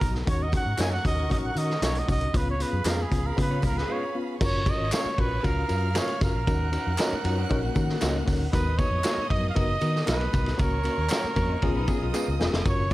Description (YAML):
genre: uptempo 1960s-style soul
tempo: 116 BPM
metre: 4/4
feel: straight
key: F# major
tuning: A4 = 440 Hz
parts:
  - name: breathy trumpet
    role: melody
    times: 0.0-12.9 s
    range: G#4 to G#5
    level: -31 LUFS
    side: right 2 dB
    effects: none
  - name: warm studio string section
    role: second line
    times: 0.0-12.9 s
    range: F#4 to F#6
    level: -38 LUFS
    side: right 2 dB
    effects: none
  - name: reed electric piano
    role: accompaniment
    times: 0.0-12.9 s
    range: A#3 to B4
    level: -32 LUFS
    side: left 3 dB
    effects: medium tremolo
  - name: vintage muted fingered electric bass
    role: bass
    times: 0.0-12.9 s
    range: E1 to D#3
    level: -28 LUFS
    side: equal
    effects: none
  - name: vintage drum kit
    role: drums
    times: 0.0-12.9 s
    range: crash cymbal, hi-hat, kick drum, ride cymbal, snare drum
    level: -28 LUFS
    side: equal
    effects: none
  - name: tambourine and handclaps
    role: percussion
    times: 0.0-12.9 s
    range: none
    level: -40 LUFS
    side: equal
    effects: none
  - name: mellow electric guitar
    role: stabs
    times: 0.8-12.3 s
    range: F#4 to F#5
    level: -36 LUFS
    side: right 3 dB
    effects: none
  - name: mellow electric guitar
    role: riff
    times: 3.5-8.4, 11.5-12.6 s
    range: G#3 to D#5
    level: -36 LUFS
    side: left 6 dB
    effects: spring reverb
room: light reverb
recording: dark, warm production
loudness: -23 LUFS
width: side -17 dB against mid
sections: 0.0-4.4 A section; 4.4-12.9 B section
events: trumpet solo 0.0-4.4; break 3.9-4.4; drum fill 12.1-12.7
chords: 0.3 D#m7; 2.3 C#7; 4.4 F#maj7; 6.5 D#m7; 8.5 Bmaj7/D#; 10.6 F#/C#; 11.6 C#7